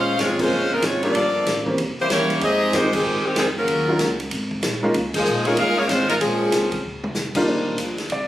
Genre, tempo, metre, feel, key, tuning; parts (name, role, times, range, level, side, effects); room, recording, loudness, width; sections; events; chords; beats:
jazz, big band swing; 190 BPM; 4/4; swing 63% on 8ths; A4 = 440 Hz
bright saxophone section; melody; 0.0-6.8 s; Eb3 to F5; -21 LUFS; left 1 dB
warm trombone section; second line; 0.0-6.8 s; Bb2 to F4; -25 LUFS; right 1 dB
upright bass; bass; 0.0-8.3 s; G1 to Ab2; -31 LUFS; equal
swinging big-band drum kit; drums; 0.2-8.2 s; crash cymbal, hi-hat, kick drum, ride cymbal, snare drum, toms; -26 LUFS; equal
warm grand piano; accompaniment; 0.4-8.3 s; Fb3 to D5; -23 LUFS; equal
moderate large studio reverb, RT60 1.3 s; recorded on a phone in the room, studio reverb, compression; -18 LUFS; side -13 dB against mid
0.0-7.5 A section
band accent 0.4, 2.9, 5.1; drum fill 6.8-7.2
0.0 Bbm9; 1.1 Gm9; 1.8 C7b9; 2.4 Fm9; 3.7 Ebm9; 4.3 Absus2; 4.9 Db69; 6.2 Bbm9; 6.8 Bb; 7.5 Ebmaj9
0.20 0.51 0.83 | 1.15 1.46 1.78 2.10 | 2.41 2.73 3.05 3.36 | 3.68 4.00 4.31 4.63 | 4.95 5.26 5.58 5.89 | 6.21 6.53 6.84 7.16 | 7.47 7.79 8.11